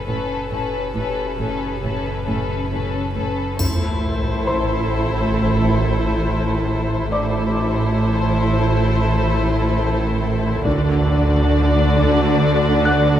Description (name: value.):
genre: cinematic, suspense film score.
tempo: 68 BPM.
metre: 4/4.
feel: straight.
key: A dorian from 3.6 s.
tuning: A4 = 440 Hz.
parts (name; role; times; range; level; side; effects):
muted symphonic violin section; melody; 0.0-13.2 s; B4 to D5; -26 LUFS; left 5 dB; none.
muted symphonic violin section; second line; 0.0-13.2 s; C#4 to A4; -27 LUFS; left 3 dB; none.
metallic inharmonic drone; drone; 0.0-13.2 s; F#1 to D2; -24 LUFS; left 1 dB; chorus, built-in reverb.
felt-muted upright piano; texture; 0.0-13.2 s; C5 to F#6; -26 LUFS; left 1 dB; none.
muted symphonic cello section; bass; 0.1-13.2 s; A2 to D3; -23 LUFS; right 2 dB; none.
muted symphonic double bass section; bass; 0.1-13.2 s; A1 to D2; -23 LUFS; right 3 dB; none.
muted studio viola section; accompaniment; 3.6-13.2 s; D4 to E4; -24 LUFS; equal; none.
taiko ensemble; drums; 3.6-5.3, 10.7-12.4 s; none; -28 LUFS; equal; none.
triangle; percussion; 3.6-5.3 s; none; -32 LUFS; left 1 dB; none.
sub drop; sound effects; 3.6-7.1 s; none; -27 LUFS; equal; none.
room: moderate scoring stage reverb, RT60 2.0 s.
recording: none.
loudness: -17 LUFS.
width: side -10 dB against mid.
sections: 0.0-3.6 A section; 3.6-13.2 B section.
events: impact 3.6-7.1.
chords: 0.0 Aadd9; 3.6 Am; 10.7 D.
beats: | 0.07 0.95 1.83 2.72 | 3.60 4.48 5.36 6.25 | 7.13 8.01 8.89 9.78 | 10.66 11.54 12.42.